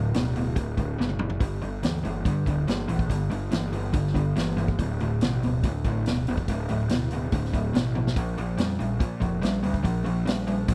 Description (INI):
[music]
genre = blues rock power trio and southern rock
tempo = 142 BPM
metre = 4/4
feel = straight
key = D minor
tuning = A4 = 440 Hz
[part]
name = overdriven semi-hollow guitar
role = riff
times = 0.0-10.7 s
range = D2 to G3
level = -29 LUFS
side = equal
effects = spring reverb
[part]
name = fuzz picked electric bass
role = bass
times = 0.0-10.7 s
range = D1 to Bb2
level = -32 LUFS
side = equal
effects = overdrive
[part]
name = vintage drum kit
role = drums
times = 0.1-10.7 s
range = hi-hat, kick drum, snare drum, toms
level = -30 LUFS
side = equal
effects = none
[sound]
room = light reverb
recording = dry, close 1970s-style studio recording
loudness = -26 LUFS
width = mono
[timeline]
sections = 0.0-10.7 A section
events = drum fill 1.0-1.4, 8.0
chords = 0.0 D5; 1.4 G5; 4.8 D5; 8.2 Bb5